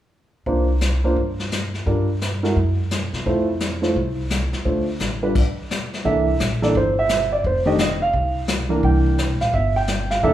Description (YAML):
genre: jazz piano trio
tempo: 172 BPM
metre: 4/4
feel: swing 64% on 8ths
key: C mixolydian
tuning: A4 = 436 Hz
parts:
  - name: dark grand piano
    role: melody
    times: 0.5-10.3 s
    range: Eb3 to G5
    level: -21 LUFS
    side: right 2 dB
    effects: none
  - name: upright bass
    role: bass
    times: 0.5-10.3 s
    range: E1 to C3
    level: -22 LUFS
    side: equal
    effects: none
  - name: vintage brush drum kit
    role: drums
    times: 0.5-10.3 s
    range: brushed snare drum, crash cymbal, hi-hat, kick drum, snare drum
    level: -25 LUFS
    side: left 2 dB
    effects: none
room: moderate recital hall reverb, RT60 1.4 s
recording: recorded in a church or concert hall, studio reverb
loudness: -18 LUFS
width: side -12 dB against mid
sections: 0.5-6.1 A section; 6.1-10.3 B section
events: none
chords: 0.5 C9sus4; 1.9 Gm7; 2.6 N.C.; 3.3 Fmaj7; 4.7 Dm7; 5.4 N.C.; 6.1 C13; 7.4 F7(no3); 8.8 C9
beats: | 0.46 0.81 1.16 1.51 | 1.86 2.21 2.56 2.91 | 3.26 3.61 3.96 4.31 | 4.66 5.01 5.36 5.71 | 6.05 6.40 6.75 7.10 | 7.45 7.79 8.14 8.49 | 8.84 9.19 9.53 9.88 | 10.23